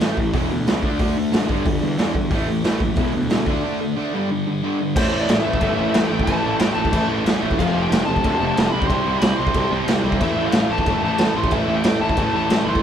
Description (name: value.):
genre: punk rock.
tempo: 183 BPM.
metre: 4/4.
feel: straight.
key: A minor from 5.0 s.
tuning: A4 = 441 Hz.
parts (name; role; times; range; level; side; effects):
distorted electric guitar; riff; 0.0-12.8 s; E2 to D4; -26 LUFS; left 8 dB; distortion.
distorted electric guitar; riff; 0.0-12.8 s; E2 to D4; -25 LUFS; right 8 dB; distortion.
thick fuzz guitar; riff; 0.0-12.8 s; E2 to D4; -28 LUFS; equal; distortion.
fuzz picked electric bass; bass; 0.0-12.8 s; E1 to E2; -26 LUFS; equal; overdrive.
raw garage drum kit; drums; 0.0-12.8 s; crash cymbal, hi-hat, kick drum, snare drum; -21 LUFS; equal; none.
bluesy overdriven lead guitar; melody; 5.0-12.8 s; C5 to C6; -24 LUFS; left 2 dB; distortion.
room: light reverb.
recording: band playing live in one room.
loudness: -17 LUFS.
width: side -9 dB against mid.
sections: 0.0-5.0 A section; 5.0-12.8 B section.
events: break 3.6-5.0.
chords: 0.3 E5; 0.8 D5; 1.5 G5; 2.3 A5; 3.0 E5; 3.5 D5; 4.1 G5; 5.0 A5; 7.6 F; 8.7 C5; 10.2 A5.